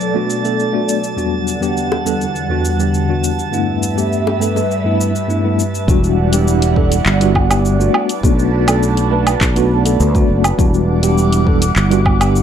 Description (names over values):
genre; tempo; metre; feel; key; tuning
sunset chillout; 102 BPM; 4/4; straight; E minor; A4 = 435 Hz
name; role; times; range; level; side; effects
airy breathy pad; sustained chords; 0.0-12.4 s; E2 to D6; -20 LUFS; right 2 dB; chorus, phaser
smooth R&B drum kit; drums; 0.0-12.4 s; handclaps, hi-hat, shaker, woodblock; -21 LUFS; right 1 dB; small room ambience
drifting glass-harmonics texture; texture; 0.0-5.9 s; A5; -28 LUFS; right 9 dB; chorus, built-in reverb
tine electric piano; accompaniment; 0.1-12.4 s; E2 to B4; -18 LUFS; moving between left 5 dB and right 4 dB; overdrive, fast stereo tremolo, auto-pan, digital delay
bongos; percussion; 1.9-4.7 s; none; -22 LUFS; left 5 dB; none
sustaining fretless electric bass; bass; 5.9-12.4 s; E1 to D2; -15 LUFS; equal; none
electronic kick drum; drums; 5.9-12.2 s; none; -16 LUFS; equal; overdrive, small room ambience
room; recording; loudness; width
light reverb, digital ambience; dark, warm production; -13 LUFS; side -9 dB against mid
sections
0.0-5.9 A section; 5.9-12.4 B section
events
none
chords
0.0 Bm7; 1.2 Em9; 3.5 G6; 5.9 Em9; 7.9 Bm7; 10.6 Em9